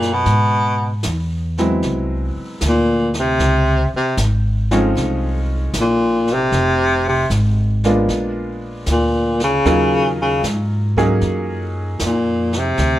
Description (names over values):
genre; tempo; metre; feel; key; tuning
jazz ballad; 77 BPM; 4/4; swing 68% on 8ths; unclear; A4 = 441 Hz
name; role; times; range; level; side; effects
warm baritone saxophone; melody; 0.0-13.0 s; Bb2 to Db3; -16 LUFS; equal; plate reverb
clear baby grand piano; accompaniment; 0.0-12.8 s; F3 to Ab4; -21 LUFS; equal; none
upright bass; bass; 0.0-13.0 s; F1 to Ab2; -20 LUFS; equal; none
jazz brush drum kit; drums; 0.0-13.0 s; brushed snare drum, hi-hat, kick drum, snare drum; -28 LUFS; right 1 dB; none
room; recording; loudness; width
light reverb; none; -15 LUFS; side -14 dB against mid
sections
0.0-13.0 A section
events
baritone saxophone solo 0.0-13.0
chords
0.3 Ab7alt; 3.4 Dbmaj7; 6.5 Fm; 8.1 Bb7b9; 9.6 Ebm9